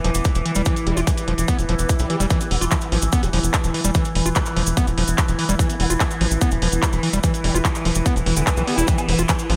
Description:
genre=psychedelic trance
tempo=146 BPM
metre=4/4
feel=straight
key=E phrygian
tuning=A4 = 440 Hz
part: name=overtone-sweeping drone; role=sustained chords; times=0.0-9.6 s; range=E3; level=-29 LUFS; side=equal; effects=chorus, built-in reverb, phaser, sidechain pumping
part: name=overdriven acid bass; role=riff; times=0.0-9.6 s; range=D3 to F4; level=-28 LUFS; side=equal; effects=sidechain pumping, delay
part: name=tight sequencer bass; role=bass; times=0.0-9.6 s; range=E1 to B1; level=-24 LUFS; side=equal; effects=none
part: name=techno drum kit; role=drums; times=0.0-9.6 s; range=handclaps, hi-hat, woodblock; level=-29 LUFS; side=equal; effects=none
part: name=warbly tape-like pad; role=texture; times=0.0-9.6 s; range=E4 to D6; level=-33 LUFS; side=equal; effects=chorus, built-in reverb, sidechain pumping
part: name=cabasa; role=percussion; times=0.1-9.5 s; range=none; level=-32 LUFS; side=equal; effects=none
part: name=electronic kick drum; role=drums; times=0.2-9.4 s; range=none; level=-23 LUFS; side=equal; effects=none
part: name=formant-sweep wobble bass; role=second line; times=0.9-9.2 s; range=G3 to B3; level=-37 LUFS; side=equal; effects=analog chorus, sidechain pumping, high-pass filter, delay
part: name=swell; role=sound effects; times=1.8-2.3 s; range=none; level=-39 LUFS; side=equal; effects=none
room=moderate lush hall reverb, RT60 1.6 s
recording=dreamy mix soaked in reverb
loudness=-20 LUFS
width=mono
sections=0.0-9.6 A section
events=none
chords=0.0 E5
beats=0.25 | 0.66 1.07 1.48 1.89 | 2.31 2.72 3.13 3.54 | 3.95 4.36 4.77 5.18 | 5.59 6.00 6.41 6.83 | 7.24 7.65 8.06 8.47 | 8.88 9.29

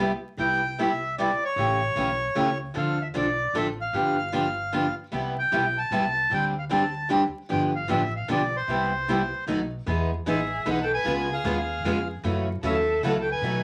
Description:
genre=acoustic string swing (jazz manouche)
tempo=152 BPM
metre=3/4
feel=swing 64% on 8ths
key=C major, E major from 9.9 s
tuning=A4 = 440 Hz
part: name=picked steel-string acoustic guitar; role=accompaniment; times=0.0-13.6 s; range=B2 to A4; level=-28 LUFS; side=equal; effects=none
part: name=picked steel-string acoustic guitar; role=accompaniment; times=0.0-0.1, 5.1-13.6 s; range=B2 to A4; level=-36 LUFS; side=equal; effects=none
part: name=upright bass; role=bass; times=0.0-13.6 s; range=G1 to F#2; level=-36 LUFS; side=equal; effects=none
part: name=accordion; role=melody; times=0.4-13.6 s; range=C5 to A5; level=-30 LUFS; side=equal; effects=none
part: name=warm violin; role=second line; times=10.3-13.6 s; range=G#4 to B4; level=-31 LUFS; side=equal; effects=none
room=wet studio reverb, RT60 0.5 s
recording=vinyl crackle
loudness=-26 LUFS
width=mono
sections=0.4-9.9 A section; 9.9-13.6 B section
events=none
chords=0.4 Cmaj7; 1.6 A7; 2.8 Dm7; 3.9 G7; 5.1 Cmaj7; 6.3 D7sus4; 7.5 G7; 8.7 Cmaj7; 9.5 B7; 9.9 Emaj7; 11.1 C#7; 12.2 F#m7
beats=| 0.38 0.78 1.17 | 1.57 1.97 2.36 | 2.76 3.15 3.55 | 3.94 4.34 4.73 | 5.13 5.52 5.92 | 6.31 6.71 7.10 | 7.50 7.89 8.29 | 8.69 9.08 9.48 | 9.87 10.27 10.66 | 11.06 11.46 11.85 | 12.25 12.64 13.04 | 13.44

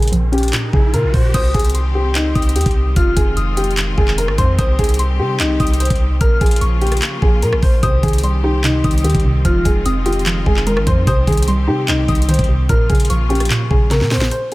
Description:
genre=hip hop, trap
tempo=148 BPM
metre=4/4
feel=half-time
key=C phrygian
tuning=A4 = 440 Hz
part: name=dark grand piano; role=melody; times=0.0-14.5 s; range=Eb4 to C5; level=-21 LUFS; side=left 1 dB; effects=digital delay
part: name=hollow square pluck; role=accompaniment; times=0.0-1.3, 7.8-14.3 s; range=Bb2 to F4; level=-20 LUFS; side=right 1 dB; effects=chorus
part: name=warm 808-style bass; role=bass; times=0.0-14.3 s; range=F1 to C3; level=-17 LUFS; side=equal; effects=none
part: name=trap drum kit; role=drums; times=0.0-14.5 s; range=crash cymbal, handclaps, hi-hat, kick drum, rim click, snare drum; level=-17 LUFS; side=equal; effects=none
part: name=riser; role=sound effects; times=0.0-1.3 s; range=none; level=-30 LUFS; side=equal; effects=none
part: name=soft synth bell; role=second line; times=1.3-13.9 s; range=C6 to F6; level=-27 LUFS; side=left 2 dB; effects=chorus, digital delay
part: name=bright symphonic string section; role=sustained chords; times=1.3-14.3 s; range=Db3 to G4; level=-26 LUFS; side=left 1 dB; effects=none
room=little or no reverb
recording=none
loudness=-13 LUFS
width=side -19 dB against mid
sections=0.0-1.3 A section; 1.3-14.3 B section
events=riser 0.0-1.3; drum fill 13.9-14.3; break 14.3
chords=0.0 Bbm; 1.3 Cm; 3.0 Fm7; 4.6 Cm; 6.2 Bbm; 7.8 Cm; 9.4 Fm7; 11.1 Cm; 12.7 Bbm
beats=0.13 0.53 0.94 | 1.34 1.75 2.15 2.56 | 2.96 3.37 3.77 4.18 | 4.58 4.99 5.40 5.80 | 6.21 6.61 7.02 7.42 | 7.83 8.23 8.64 9.04 | 9.45 9.86 10.26 10.67 | 11.07 11.48 11.88 12.29 | 12.69 13.10 13.50 13.91 | 14.31

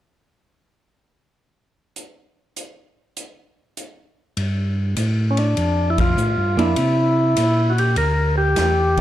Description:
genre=soul jazz organ trio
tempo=100 BPM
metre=4/4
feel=swing 68% on 8ths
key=unclear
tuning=A4 = 440 Hz
part: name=swinging big-band drum kit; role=drums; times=2.0-9.0 s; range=hi-hat, kick drum, ride cymbal, snare drum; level=-27 LUFS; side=left 1 dB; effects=none
part: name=mellow tonewheel organ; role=bass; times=4.4-9.0 s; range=D2 to C3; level=-20 LUFS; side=equal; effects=slow rotary speaker
part: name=percussive tonewheel organ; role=melody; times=5.3-9.0 s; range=C#4 to Bb4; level=-19 LUFS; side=equal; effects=slow rotary speaker
part: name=archtop guitar, miked and amplified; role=accompaniment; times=6.6-9.0 s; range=Bb3 to E4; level=-22 LUFS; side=right 4 dB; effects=none
room=light reverb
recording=dark, warm production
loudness=-17 LUFS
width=side -13 dB against mid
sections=2.0-4.4 A section; 4.4-9.0 B section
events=band accent 5.9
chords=2.0 N.C.; 4.4 Gsus2; 6.8 C9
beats=| 1.96 2.56 3.17 3.77 | 4.37 4.97 5.57 6.17 | 6.77 7.38 7.98 8.58

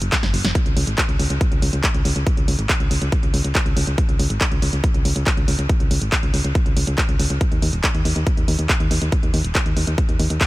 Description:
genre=uplifting trance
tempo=140 BPM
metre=4/4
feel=straight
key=unclear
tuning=A4 = 440 Hz
part: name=solid FM bass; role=bass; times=0.0-10.4 s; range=D#1 to D#2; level=-21 LUFS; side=equal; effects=sidechain pumping
part: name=punchy analog drum machine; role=drums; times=0.0-10.5 s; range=handclaps, hi-hat, snare drum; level=-24 LUFS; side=equal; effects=none
part: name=electronic kick drum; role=drums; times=0.1-10.5 s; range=none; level=-20 LUFS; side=equal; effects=none
room=digital ambience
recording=none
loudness=-17 LUFS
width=side -19 dB against mid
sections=0.0-10.5 A section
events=drum fill 0.1-0.6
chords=none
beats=0.12 | 0.55 0.98 1.41 1.84 | 2.27 2.69 3.12 3.55 | 3.98 4.41 4.84 5.27 | 5.70 6.12 6.55 6.98 | 7.41 7.84 8.27 8.70 | 9.12 9.55 9.98 10.41

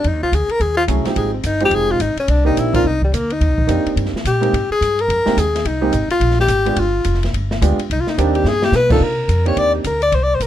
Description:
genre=jazz, small-group swing and bop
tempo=214 BPM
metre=4/4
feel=swing 61% on 8ths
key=C minor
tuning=A4 = 439 Hz
part: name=warm tenor saxophone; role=melody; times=0.0-10.5 s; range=G3 to D5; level=-18 LUFS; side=left 2 dB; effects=none
part: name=upright bass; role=bass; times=0.0-10.5 s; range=F1 to C3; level=-19 LUFS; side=equal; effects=none
part: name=open jazz drum kit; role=drums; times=0.0-10.5 s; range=crash cymbal, hi-hat, kick drum, ride cymbal, snare drum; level=-24 LUFS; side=equal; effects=none
part: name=warm concert grand piano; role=accompaniment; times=0.9-9.8 s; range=Eb3 to Bb4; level=-20 LUFS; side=right 4 dB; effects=none
room=light reverb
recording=none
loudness=-14 LUFS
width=side -12 dB against mid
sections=0.0-9.0 A section; 9.0-10.5 A section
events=tenor saxophone solo 0.0-10.5; drum fill 8.4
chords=0.0 Fm7; 2.3 Cm7; 4.5 Abmaj7; 6.8 G7b9; 7.9 Cm7; 8.4 G7; 9.0 Cm7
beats=| 0.05 0.33 0.61 0.89 | 1.17 1.45 1.73 2.01 | 2.29 2.57 2.85 3.13 | 3.41 3.69 3.97 4.25 | 4.53 4.81 5.09 5.37 | 5.65 5.93 6.21 6.49 | 6.77 7.05 7.33 7.61 | 7.89 8.17 8.45 8.73 | 9.01 9.29 9.57 9.85 | 10.13 10.41

